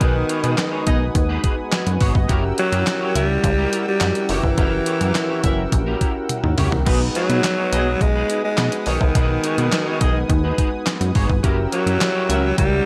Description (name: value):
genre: early-eighties boogie funk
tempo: 105 BPM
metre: 4/4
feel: straight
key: unclear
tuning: A4 = 441 Hz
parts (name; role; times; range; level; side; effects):
- raspy alto saxophone; melody; 0.0-12.9 s; D#3 to G#3; -24 LUFS; equal; slapback echo
- funky polysynth comp; accompaniment; 0.0-12.9 s; G#3 to G#5; -29 LUFS; equal; chorus
- warm analog pad; sustained chords; 0.0-12.9 s; A#4 to E6; -34 LUFS; equal; chorus
- electric guitar at the edge of break-up; riff; 0.0-12.8 s; D#4 to C#5; -32 LUFS; equal; ensemble chorus
- plucky analog bass; bass; 0.0-12.8 s; F#1 to B2; -23 LUFS; equal; none
- detuned 8-bit digital drum machine; drums; 0.0-12.7 s; crash cymbal, handclaps, hi-hat, kick drum, snare drum, toms; -23 LUFS; equal; gated reverb
- mellow horn section; second line; 0.9-12.5 s; B3 to E5; -30 LUFS; equal; none
room: little or no reverb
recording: none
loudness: -19 LUFS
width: mono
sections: 0.0-12.9 A section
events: drum fill 6.3-6.9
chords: 0.0 B6; 2.3 F#7b9; 6.9 B6; 11.4 F#7b9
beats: | 0.01 0.58 1.15 1.72 | 2.29 2.87 3.44 4.01 | 4.58 5.15 5.72 6.29 | 6.87 7.44 8.01 8.58 | 9.15 9.72 10.29 10.87 | 11.44 12.01 12.58